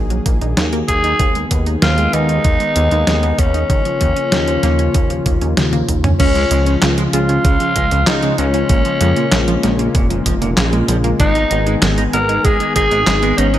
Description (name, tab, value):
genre	synthwave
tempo	96 BPM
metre	4/4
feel	straight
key	unclear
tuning	A4 = 440 Hz
part	warm analog pad	sustained chords	0.0-13.6 s	Db3 to Ab4	-21 LUFS	left 3 dB	chorus, vintage 12-bit sampler grit, sidechain pumping
part	wide unison pluck	arpeggios	0.0-13.6 s	Db3 to Eb4	-24 LUFS	right 4 dB	ping-pong delay
part	chorused synth bass	bass	0.0-13.6 s	F1 to F2	-18 LUFS	equal	sidechain pumping
part	detuned 8-bit digital drum machine	drums	0.1-13.6 s	crash cymbal, handclaps, hi-hat, snare drum, toms	-19 LUFS	equal	none
part	electronic kick drum	drums	0.3-12.9 s	none	-16 LUFS	equal	none
part	breathy tenor saxophone	melody	0.9-13.6 s	Db4 to Bb4	-18 LUFS	left 1 dB	digital delay
part	soft synth bell	second line	6.2-13.6 s	Db4 to Bb4	-25 LUFS	left 1 dB	chorus
part	clean electric guitar	riff	6.2-13.6 s	Bb2 to Eb4	-24 LUFS	right 3 dB	wide subtle chorus, ping-pong delay
room	light reverb, digital ambience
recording	bright 1980s-style digital production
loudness	-13 LUFS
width	side -12 dB against mid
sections	0.0-6.2 A section; 6.2-13.6 B section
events	drum fill 5.6-6.2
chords	0.0 Ebm; 1.2 Abm/Eb; 3.7 Bbm/Eb; 6.2 Db; 8.7 Bbm7; 11.2 Abm